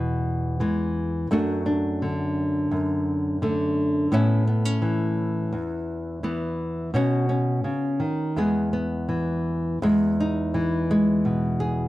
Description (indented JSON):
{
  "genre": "folk, solo fingerstyle acoustic guitar",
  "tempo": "85 BPM",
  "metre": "4/4",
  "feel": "rubato",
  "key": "E major",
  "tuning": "A4 = 441 Hz",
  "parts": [
    { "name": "nylon-string guitar", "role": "solo", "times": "0.0-11.9 s", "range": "E2 to G#4", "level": "-22 LUFS", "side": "equal", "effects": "none" }
  ],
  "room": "light reverb",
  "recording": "dark, warm production",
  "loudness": "-22 LUFS",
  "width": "side -16 dB against mid",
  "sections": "0.0-9.8 A section; 9.8-11.9 B section",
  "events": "none",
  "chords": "0.0 E; 1.3 D/F#; 4.1 Aadd9; 6.9 Badd9; 8.4 E; 9.8 Emaj7",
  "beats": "0.61 | 1.33 2.03 2.73 3.42 | 4.12 4.82 5.52 6.23 | 6.94 7.64 8.36 9.09 | 9.82 10.54 11.24"
}